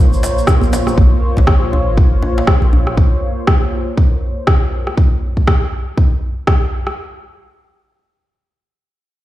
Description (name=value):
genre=afro house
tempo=120 BPM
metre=4/4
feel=swing 58% on 16ths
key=Bb minor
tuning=A4 = 440 Hz
part: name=warm analog pad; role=sustained chords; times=0.0-4.9 s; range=Bb3 to Db5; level=-22 LUFS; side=left 1 dB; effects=chorus, sidechain pumping
part: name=warm 808-style bass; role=bass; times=0.0-2.9 s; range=Ab1 to Bb1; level=-16 LUFS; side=equal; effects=sidechain pumping
part: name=tube shaker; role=percussion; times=0.1-1.0 s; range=none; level=-30 LUFS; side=right 3 dB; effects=none
part: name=djembe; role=percussion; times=0.2-2.8 s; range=none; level=-23 LUFS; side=left 2 dB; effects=none
part: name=electronic kick drum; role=drums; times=0.5-6.6 s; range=none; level=-12 LUFS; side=equal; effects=small room ambience
part: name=electronic rim click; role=drums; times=0.5-7.0 s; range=none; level=-20 LUFS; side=equal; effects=small room ambience
part: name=congas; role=percussion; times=0.6-1.0 s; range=none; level=-24 LUFS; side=right 5 dB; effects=none
room=light reverb, small room reverb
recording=played on a big sound system in a bare room, large studio reverb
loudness=-12 LUFS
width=side -15 dB against mid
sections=0.0-7.0 A section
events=none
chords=0.0 Bbm